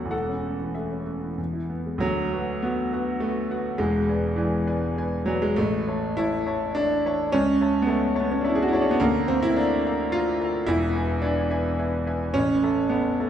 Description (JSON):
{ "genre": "classical, romantic character piece for solo piano", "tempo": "91-110 BPM", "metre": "3/4", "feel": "rubato", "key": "A major", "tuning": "A4 = 440 Hz", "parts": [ { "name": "warm concert grand piano", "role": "solo", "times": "0.0-13.3 s", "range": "E1 to Bb5", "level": "-22 LUFS", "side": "equal", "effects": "none" } ], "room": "wet scoring stage reverb, RT60 1.9 s", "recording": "heard from further back in the room", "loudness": "-22 LUFS", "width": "side -9 dB against mid", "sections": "0.0-2.0 A section; 2.0-13.3 B section", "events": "none", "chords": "0.1 A/E; 1.4 E; 2.0 Bm/D; 3.8 E7; 5.6 A; 7.3 A/C#; 9.0 Bb/D; 10.7 E7; 12.3 A" }